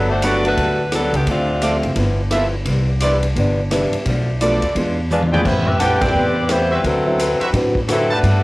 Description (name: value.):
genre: jazz, big band swing.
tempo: 172 BPM.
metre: 4/4.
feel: swing 62% on 8ths.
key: G major.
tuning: A4 = 441 Hz.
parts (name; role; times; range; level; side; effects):
mellow saxophone section; melody; 0.0-1.9, 5.1-8.4 s; D3 to F#5; -19 LUFS; equal; cassette tape.
picked steel-string acoustic guitar; accompaniment; 0.0-8.4 s; G2 to B4; -23 LUFS; left 1 dB; cassette tape.
upright bass; bass; 0.0-8.4 s; F#1 to A2; -20 LUFS; equal; none.
warm baby grand piano; accompaniment; 0.2-7.7 s; F3 to E5; -24 LUFS; right 1 dB; cassette tape.
warm trumpet section; stabs; 0.2-8.2 s; C4 to A5; -22 LUFS; right 1 dB; cassette tape.
swinging big-band drum kit; drums; 0.2-8.3 s; crash cymbal, hi-hat, kick drum, ride cymbal, rim click, toms; -23 LUFS; equal; none.
room: moderate studio reverb, RT60 0.6 s.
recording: home recording on cassette.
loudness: -15 LUFS.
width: side -20 dB against mid.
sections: 0.0-8.4 A section.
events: drum fill 5.1-5.4; band accent 6.0.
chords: 0.0 Gmaj9; 1.3 Dm7; 2.0 G13; 2.7 Cmaj9; 4.1 Bm7b5; 4.8 E7b9; 5.4 Am9; 6.8 D13.